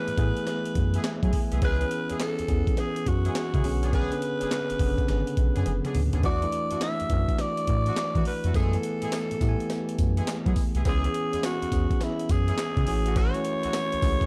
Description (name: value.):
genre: R&B, new jack swing.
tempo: 104 BPM.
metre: 4/4.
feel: swing 65% on 16ths.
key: B dorian.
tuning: A4 = 438 Hz.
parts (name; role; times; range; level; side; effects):
growling alto saxophone; melody; 0.0-14.3 s; E4 to E5; -33 LUFS; equal; none.
bell-like tine electric piano; accompaniment; 0.0-14.3 s; C#3 to G#5; -33 LUFS; equal; none.
round analog bass; bass; 0.1-14.2 s; F#1 to F#3; -29 LUFS; equal; none.
breakbeat sampler-style drum kit; drums; 0.1-14.3 s; handclaps, hi-hat, kick drum, snare drum, tambourine, toms; -30 LUFS; equal; none.
cowbell; percussion; 0.5-13.9 s; none; -45 LUFS; equal; none.
warm horn section; stabs; 0.9-13.8 s; F#3 to G#4; -40 LUFS; equal; none.
room: digital ambience.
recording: dark, warm production.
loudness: -26 LUFS.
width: mono.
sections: 0.0-14.3 A section.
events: tine electric piano fill 0.8-1.6; drum fill 5.7-6.2.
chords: 0.0 F#m11; 1.6 C#m7; 3.6 Bm69; 6.2 E9sus4; 8.5 F#m11; 10.9 C#m7; 12.9 A6.